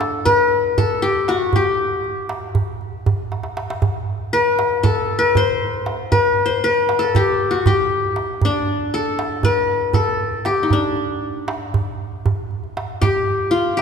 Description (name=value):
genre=Turkish makam ensemble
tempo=235 BPM (eighths)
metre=9/8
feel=straight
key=D makam hicaz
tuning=A4 = 440 Hz
part: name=qanun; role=melody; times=0.0-13.8 s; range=D4 to C5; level=-17 LUFS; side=left 3 dB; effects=none
part: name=darbuka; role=percussion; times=0.0-13.8 s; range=none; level=-22 LUFS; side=right 3 dB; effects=none
room=wet church reverb, RT60 2.5 s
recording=recorded in a church or concert hall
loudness=-17 LUFS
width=side -6 dB against mid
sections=0.0-13.0 A section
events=drum fill 3.3-3.8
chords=none